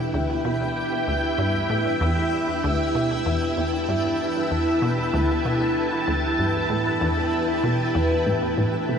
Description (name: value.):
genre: ambient, sequencer-driven space music.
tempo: 96 BPM.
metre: 4/4.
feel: straight.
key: unclear.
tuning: A4 = 440 Hz.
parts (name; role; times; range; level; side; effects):
string machine, full ensemble; sustained chords; 0.0-9.0 s; A3 to A5; -23 LUFS; equal; ensemble chorus, shimmer reverb.
concert harp; arpeggios; 0.0-9.0 s; G3 to B4; -32 LUFS; left 3 dB; auto-pan, analog delay, shimmer reverb.
resonant blip pluck; riff; 0.0-9.0 s; D2 to C3; -26 LUFS; equal; chorus, analog delay.
twinkling granular texture; texture; 0.0-9.0 s; E4 to G5; -34 LUFS; equal; built-in reverb, shimmer reverb.
room: wet huge ambient reverb, RT60 7.7 s.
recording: cassette tape.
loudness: -20 LUFS.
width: side -7 dB against mid.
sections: 0.0-9.0 A section.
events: none.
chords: 0.0 Em7; 8.3 Am.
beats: 0.14 | 0.76 1.39 2.01 2.64 | 3.26 3.89 4.51 5.14 | 5.76 6.39 7.01 7.64 | 8.26 8.89.